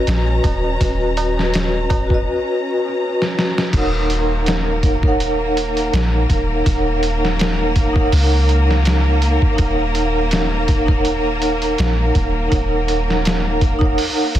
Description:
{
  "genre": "trip hop",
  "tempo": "82 BPM",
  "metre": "4/4",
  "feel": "swing 54% on 16ths",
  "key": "Eb minor",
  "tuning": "A4 = 436 Hz",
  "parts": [
    { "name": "vibraphone with soft mallets", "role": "accompaniment", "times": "0.0-14.4 s", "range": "Eb4 to Gb5", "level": "-20 LUFS", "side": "equal", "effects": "tremolo, tape echo" },
    { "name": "warm symphonic violin section", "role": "sustained chords", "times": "0.0-14.4 s", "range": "Bb3 to Bb5", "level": "-25 LUFS", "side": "equal", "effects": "none" },
    { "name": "soft 808-style bass", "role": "bass", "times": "0.0-14.4 s", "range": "D#1 to Db2", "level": "-19 LUFS", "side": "equal", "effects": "none" },
    { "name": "trip hop sampler-style drum kit", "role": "drums", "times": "0.1-14.4 s", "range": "crash cymbal, hi-hat, kick drum, snare drum", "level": "-19 LUFS", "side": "equal", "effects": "none" },
    { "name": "tabla", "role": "percussion", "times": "0.1-2.2 s", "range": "none", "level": "-29 LUFS", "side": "right 5 dB", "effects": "none" }
  ],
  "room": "small room ambience",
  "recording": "dense, heavily limited modern master, vinyl crackle",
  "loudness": "-15 LUFS",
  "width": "side -12 dB against mid",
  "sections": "0.0-3.7 A section; 3.7-14.4 B section",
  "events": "drum fill 3.2-3.7",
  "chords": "0.0 B/D#; 3.7 Ebm7"
}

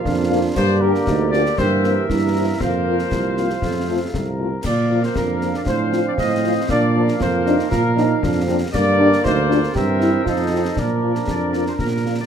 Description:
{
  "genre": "military-style march for wind band",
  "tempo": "118 BPM",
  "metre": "2/4",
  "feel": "straight",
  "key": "Bb major",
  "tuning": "A4 = 439 Hz",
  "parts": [
    { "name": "warm euphonium", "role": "second line", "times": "0.0-12.3 s", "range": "Bb3 to G4", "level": "-25 LUFS", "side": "right 5 dB", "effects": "none" },
    { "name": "warm woodwind section", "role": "second line", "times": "0.0-12.2 s", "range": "F4 to F5", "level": "-26 LUFS", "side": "left 2 dB", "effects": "none" },
    { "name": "clear trombone section", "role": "sustained chords", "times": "0.0-12.3 s", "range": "D3 to Eb4", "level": "-26 LUFS", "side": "right 3 dB", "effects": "none" },
    { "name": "warm tuba", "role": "bass", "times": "0.1-12.2 s", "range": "C2 to Bb2", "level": "-21 LUFS", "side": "right 2 dB", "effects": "none" },
    { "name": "concert snare drum, concert bass drum and clash cymbals", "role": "drums", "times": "0.1-12.3 s", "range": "none", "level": "-28 LUFS", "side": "left 2 dB", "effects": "none" },
    { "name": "dark French horn section", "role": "accompaniment", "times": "0.3-12.1 s", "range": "F3 to G4", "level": "-22 LUFS", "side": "left 6 dB", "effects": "none" },
    { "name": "dark trumpet section", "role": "melody", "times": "0.6-12.3 s", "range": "A4 to Eb5", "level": "-24 LUFS", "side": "left 2 dB", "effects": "none" }
  ],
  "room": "light reverb",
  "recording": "close, detailed microphones",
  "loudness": "-16 LUFS",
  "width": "side -8 dB against mid",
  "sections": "0.0-12.3 A section",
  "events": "none",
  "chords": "0.0 Bb; 0.6 Gm; 1.6 C7/G; 2.6 Fsus4; 3.6 F; 4.6 Bb; 5.7 F7/A; 6.7 Bb; 8.7 Gm; 9.7 C7/G; 10.3 F7; 10.8 Bb"
}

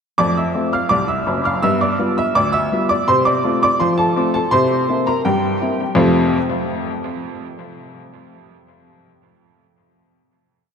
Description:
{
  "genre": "ragtime piano",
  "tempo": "83 BPM",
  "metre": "2/4",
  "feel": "straight",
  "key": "F major",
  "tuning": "A4 = 436 Hz",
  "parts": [
    { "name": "bright upright piano", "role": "solo", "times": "0.2-6.4 s", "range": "Gb1 to F6", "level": "-15 LUFS", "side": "equal", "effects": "ping-pong delay" }
  ],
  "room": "wet church reverb, RT60 3.7 s",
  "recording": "dreamy mix soaked in reverb",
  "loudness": "-15 LUFS",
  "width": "side -6 dB against mid",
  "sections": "0.2-6.0 A section; 6.0-7.4 final chord",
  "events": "none",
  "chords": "0.2 F; 1.6 G7; 3.1 F/C; 4.5 C7; 6.0 F"
}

